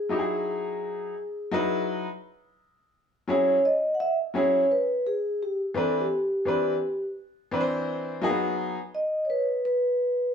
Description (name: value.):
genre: hip hop.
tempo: 85 BPM.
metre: 4/4.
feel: swing 64% on 16ths.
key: E major.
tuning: A4 = 438 Hz.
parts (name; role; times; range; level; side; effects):
vibraphone with soft mallets; melody; 0.0-10.3 s; G4 to F#5; -25 LUFS; equal; none.
bright upright piano; accompaniment; 0.1-8.8 s; E3 to C5; -27 LUFS; left 1 dB; none.
room: wet large studio reverb, RT60 0.9 s.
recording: band playing live in one room.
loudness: -24 LUFS.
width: side -7 dB against mid.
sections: 0.0-2.6 A section; 2.6-10.3 B section.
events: none.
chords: 0.0 Emaj9; 2.6 E69; 5.4 Cmaj9; 8.2 G#m7.